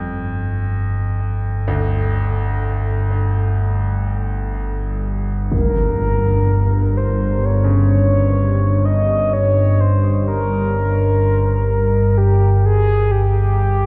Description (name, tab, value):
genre	dark ambient drone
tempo	63 BPM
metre	4/4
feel	straight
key	unclear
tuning	A4 = 441 Hz
part	bright concert grand piano	arpeggios	0.0-13.9 s	D2 to C#3	-30 LUFS	equal	diffuse ambient delay
part	analog drone	drone	0.0-13.9 s	G1 to G2	-19 LUFS	equal	chorus
part	mellow horn-like synth lead	melody	5.5-13.9 s	G4 to Eb5	-23 LUFS	equal	chorus, diffuse ambient delay
part	impact	percussion	5.5-5.7 s	none	-29 LUFS	equal	none
room	wet cathedral reverb, RT60 6.1 s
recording	cassette tape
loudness	-17 LUFS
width	mono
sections	0.0-13.9 A section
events	none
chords	0.0 Gm